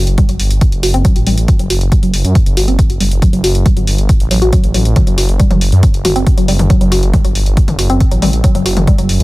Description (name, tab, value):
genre	driving peak-time techno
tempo	138 BPM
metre	4/4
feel	straight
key	unclear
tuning	A4 = 440 Hz
part	dark detuned saw bass	bass	0.0-9.2 s	F#1 to F#2	-14 LUFS	equal	sidechain pumping
part	punchy analog drum machine	drums	0.1-9.2 s	hi-hat, toms	-20 LUFS	left 2 dB	sidechain pumping on hats, sidechain pumping on toms
part	woody wave-folded pluck	riff	0.2-9.1 s	F#3 to F#4	-17 LUFS	equal	chorus, tube saturation, vintage 12-bit sampler grit, sidechain pumping, ping-pong delay
part	electronic kick drum	drums	0.2-9.0 s	none	-11 LUFS	equal	none
room	little or no reverb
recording	none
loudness	-9 LUFS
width	side -20 dB against mid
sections	0.0-9.2 A section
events	filter sweep on synth arpeggio sound 0.0-9.2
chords	none